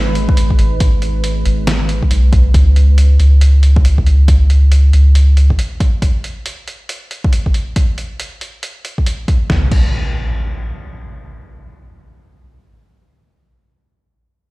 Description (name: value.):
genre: deep dubstep.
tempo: 138 BPM.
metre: 4/4.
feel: swing 62% on 16ths, half-time.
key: G# minor.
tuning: A4 = 445 Hz.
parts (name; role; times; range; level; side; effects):
deep dark ambient pad; sustained chords; 0.0-2.5 s; G#3 to B4; -25 LUFS; right 2 dB; chorus, built-in reverb.
soft dub sub bass; bass; 0.0-5.6 s; G#1 to C#2; -10 LUFS; equal; none.
trip hop sampler-style drum kit; drums; 0.2-9.9 s; crash cymbal, hi-hat, snare drum; -24 LUFS; equal; none.
electronic kick drum; drums; 0.3-9.9 s; none; -13 LUFS; equal; overdrive.
impact; sound effects; 9.5-13.1 s; none; -20 LUFS; equal; none.
room: digital ambience.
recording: played on a big sound system in a bare room, stone room reverb.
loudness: -10 LUFS.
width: side -22 dB against mid.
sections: 0.0-9.5 A section; 9.5-13.0 B section.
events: none.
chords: 0.0 G#m; 2.5 N.C..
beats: 0.37 | 0.80 1.24 1.67 2.11 | 2.54 2.98 3.41 3.85 | 4.28 4.72 5.15 5.59 | 6.02 6.46 6.89 7.33 | 7.76 8.20 8.63 9.06 | 9.50 9.93 10.37 10.80 | 11.24 11.67 12.11 12.54.